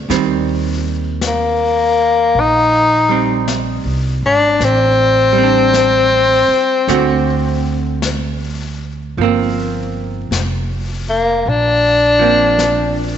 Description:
jazz ballad; 53 BPM; 4/4; swing 66% on 8ths; A4 = 440 Hz
archtop guitar, miked and amplified; accompaniment; 0.0-13.2 s; D3 to F#4; -19 LUFS; right 9 dB
upright bass; bass; 0.0-13.2 s; F1 to Eb2; -21 LUFS; equal
jazz brush drum kit; drums; 0.1-13.2 s; brushed snare drum, hi-hat, snare drum; -26 LUFS; left 6 dB
breathy tenor saxophone; melody; 1.3-13.2 s; Bb3 to Eb4; -12 LUFS; left 2 dB
moderate echo chamber reverb, RT60 2.4 s; 1960s-style stereo with parts hard left and right, nothing above 8.0 kHz; -12 LUFS; side -9 dB against mid
0.0-13.2 A section
0.1 Eb6; 4.6 Am7; 6.9 D7; 9.2 Gm7

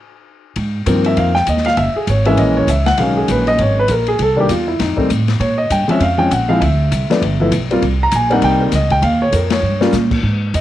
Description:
jazz piano trio; 198 BPM; 4/4; swing 60% on 8ths; Ab major; A4 = 439 Hz
upright bass; bass; 0.6-10.6 s; Gb1 to Bb2; -17 LUFS; right 1 dB
open jazz drum kit; drums; 0.6-10.6 s; crash cymbal, hi-hat, kick drum, ride cymbal, snare drum; -23 LUFS; left 5 dB
warm grand piano; melody; 0.9-10.6 s; Eb3 to Bb5; -15 LUFS; equal
studio reverb; 1960s-style stereo; -13 LUFS; side -13 dB against mid
0.6-10.2 A section
stop 0.0-0.6; band accent 9.5; drum fill 9.6-9.9
0.0 N.C.; 0.6 Ab69; 1.8 Gb7; 3.0 B6; 4.2 C5; 4.8 F7; 5.4 Bbm7; 6.6 D7(no3); 7.2 G7; 7.8 Cm7; 9.0 Eb7

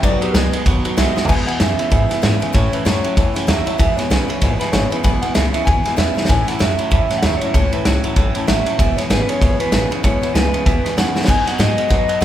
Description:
rockabilly; 192 BPM; 4/4; swing 59% on 8ths; E major; A4 = 440 Hz
clear upright piano; accompaniment; 0.0-12.2 s; F#3 to A5; -27 LUFS; left 2 dB
picked steel-string acoustic guitar; accompaniment; 0.0-12.2 s; E2 to F#4; -26 LUFS; left 4 dB
twangy electric guitar; riff; 0.0-12.2 s; E2 to G#3; -24 LUFS; right 3 dB
upright bass; bass; 0.0-12.2 s; E1 to B2; -21 LUFS; equal
vintage drum kit; drums; 0.0-12.2 s; crash cymbal, kick drum, ride cymbal, snare drum, toms; -18 LUFS; equal
electric guitar through a small old amp; melody; 1.0-12.2 s; B4 to G#5; -22 LUFS; right 1 dB
moderate large studio reverb, RT60 1.0 s; band playing live in one room; -14 LUFS; side -12 dB against mid
0.0-1.3 A section; 1.3-12.2 B section
upright piano solo 0.0-1.3; drum fill 1.1, 6.1, 11.1
0.0 B; 1.3 E; 2.5 A; 3.8 E; 6.3 A; 8.8 E; 11.3 B

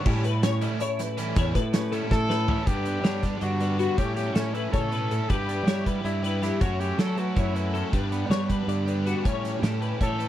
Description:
math rock and midwest emo; 319 BPM (eighths); 7/8; straight; A4 = 441 Hz
twelve-string electric guitar; accompaniment; 0.0-10.3 s; G2 to E4; -32 LUFS; right 4 dB; analog chorus
twelve-string electric guitar; arpeggios; 0.0-10.3 s; F#4 to D5; -32 LUFS; left 9 dB; ensemble chorus
biting overdriven guitar; riff; 0.0-10.3 s; G2 to G4; -36 LUFS; equal
fuzz fingered electric bass; bass; 0.1-10.3 s; E2 to G3; -28 LUFS; equal; overdrive
loose indie drum kit; drums; 0.1-10.3 s; crash cymbal, hi-hat, kick drum, snare drum, toms; -28 LUFS; equal
warm trumpet; melody; 2.1-7.8, 10.0-10.3 s; C#4 to A4; -31 LUFS; left 1 dB
studio ambience; -23 LUFS; side -12 dB against mid
0.0-2.7 A section; 2.7-10.3 B section
drum fill 2.1-2.7
0.1 A7; 2.7 Gmaj7; 4.0 A7; 5.3 Em7/G; 6.6 F#m7; 7.9 Gmaj7; 9.2 A7

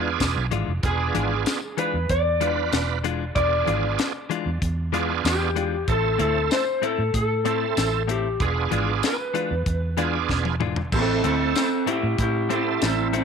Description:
straight-eighth soul blues; 95 BPM; 4/4; straight; A harmonic minor; A4 = 442 Hz
electric slide guitar; melody; 0.0-13.2 s; C4 to D5; -25 LUFS; left 1 dB
bright tonewheel organ; accompaniment; 0.0-13.1 s; A3 to B4; -27 LUFS; right 12 dB; slow rotary speaker, overdrive, chorus vibrato
direct-recorded clean electric guitar; stabs; 0.0-13.2 s; A2 to F4; -30 LUFS; left 10 dB
vintage muted fingered electric bass; bass; 0.0-13.2 s; E1 to A2; -26 LUFS; right 1 dB
tight funk drum kit; drums; 0.2-13.2 s; crash cymbal, hi-hat, kick drum, snare drum, tambourine, toms; -27 LUFS; left 3 dB
light reverb, studio reverb; 1960s-style stereo with parts hard left and right; -21 LUFS; side -6 dB against mid
0.0-10.9 A section; 10.9-13.2 B section
drum fill 10.3-10.9; electric slide guitar solo 10.9-13.2
0.0 E7b9; 5.9 Am; 8.4 E7b9; 10.9 Am

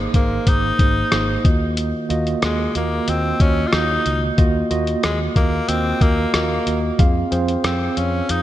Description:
1980s-style pop; 92 BPM; 4/4; straight; A4 = 440 Hz
mellow tine electric piano; accompaniment; 0.0-8.4 s; Ab2 to F5; -22 LUFS; right 2 dB; medium stereo tremolo
fretless electric bass; bass; 0.0-8.4 s; Ab1 to F2; -23 LUFS; equal
lo-fi sampler-style drum kit; drums; 0.1-8.4 s; hi-hat, kick drum, rim click; -19 LUFS; equal; gated reverb
raspy tenor saxophone; melody; 0.2-8.4 s; Ab3 to F4; -24 LUFS; left 2 dB; digital delay
moderate lush hall reverb, RT60 2.5 s; bright 1980s-style digital production; -16 LUFS; side -13 dB against mid
0.0-8.4 A section
0.0 Abadd9; 1.4 Ebmadd9; 7.0 Fm

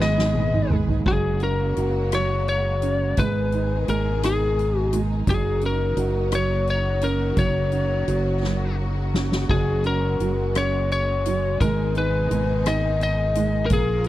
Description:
six-eight pop ballad; 57 BPM (dotted quarters); 6/8; straight; A4 = 445 Hz
lightly driven lead guitar; melody; 0.0-14.1 s; Ab4 to Eb5; -25 LUFS; left 3 dB
warm upright piano; accompaniment; 0.0-14.1 s; Gb3 to Gb4; -28 LUFS; right 7 dB
clear studio string section; sustained chords; 0.0-14.1 s; Cb3 to Cb5; -32 LUFS; left 1 dB
fingered electric bass; bass; 0.0-14.1 s; Gb1 to Bb1; -24 LUFS; equal
soft-mallet drum kit; drums; 0.0-14.1 s; crash cymbal, hi-hat, kick drum, rim click, snare drum, splash cymbal, toms; -26 LUFS; equal
little or no reverb; dry, close 1970s-style studio recording; -20 LUFS; side -15 dB against mid
0.0-1.1 A section; 1.1-14.1 B section
drum fill 0.0-1.1, 8.4-9.5
0.0 Abm; 1.1 Gbadd9; 3.2 Abm; 5.3 Ebm7/Gb; 9.5 Gbadd9; 11.6 Abm

